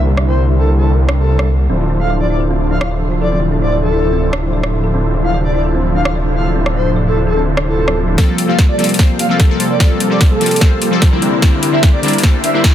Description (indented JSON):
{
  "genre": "future bass",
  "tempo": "148 BPM",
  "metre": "4/4",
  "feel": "half-time",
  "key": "D minor",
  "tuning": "A4 = 441 Hz",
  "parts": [
    { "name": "glassy digital keys", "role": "accompaniment", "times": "0.0-1.5, 8.2-12.7 s", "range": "D3 to C5", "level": "-18 LUFS", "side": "left 4 dB", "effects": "chorus, sidechain pumping" },
    { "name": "airy breathy pad", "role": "sustained chords", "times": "0.0-12.7 s", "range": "C3 to C5", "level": "-26 LUFS", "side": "right 1 dB", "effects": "none" },
    { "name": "supersaw chords", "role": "riff", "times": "0.0-12.7 s", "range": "F3 to D5", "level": "-19 LUFS", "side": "right 1 dB", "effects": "sidechain pumping, low-pass filter" },
    { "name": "wide detuned saw bass", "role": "bass", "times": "0.0-8.2 s", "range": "D1 to C2", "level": "-15 LUFS", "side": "equal", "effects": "chorus, sidechain pumping" },
    { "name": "trap drum kit", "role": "drums", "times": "0.2-12.7 s", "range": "hi-hat, rim click, snare drum", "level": "-20 LUFS", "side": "equal", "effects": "overdrive, soft clipping on snare" },
    { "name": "breathy flute-like synth lead", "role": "melody", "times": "0.3-12.6 s", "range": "A4 to F5", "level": "-21 LUFS", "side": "equal", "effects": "lush chorus, sidechain pumping, tape echo" },
    { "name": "thumb-piano-like synth pluck", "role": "arpeggios", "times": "1.7-8.1 s", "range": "C4 to D5", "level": "-26 LUFS", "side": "left 2 dB", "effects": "chorus, sidechain pumping, tape echo" },
    { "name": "electronic kick drum", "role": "drums", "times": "8.2-12.7 s", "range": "none", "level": "-10 LUFS", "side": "equal", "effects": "overdrive" }
  ],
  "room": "digital ambience",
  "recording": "dense, heavily limited modern master",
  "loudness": "-11 LUFS",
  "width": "side -11 dB against mid",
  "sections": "0.0-8.2 A section; 8.2-12.7 B section",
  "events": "build-up 8.2-12.7; drum fill 8.2-12.7; filter sweep on supersaw synth 8.2-12.7",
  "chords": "0.0 C9; 1.7 Dm9; 8.2 Gm11; 11.2 C9",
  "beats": "| 0.07 0.48 0.88 1.29 | 1.70 2.10 2.51 2.91 | 3.32 3.72 4.13 4.53 | 4.94 5.34 5.75 6.16 | 6.56 6.96 7.37 7.78 | 8.18 8.59 8.99 9.40 | 9.80 10.21 10.61 11.02 | 11.43 11.83 12.24 12.64"
}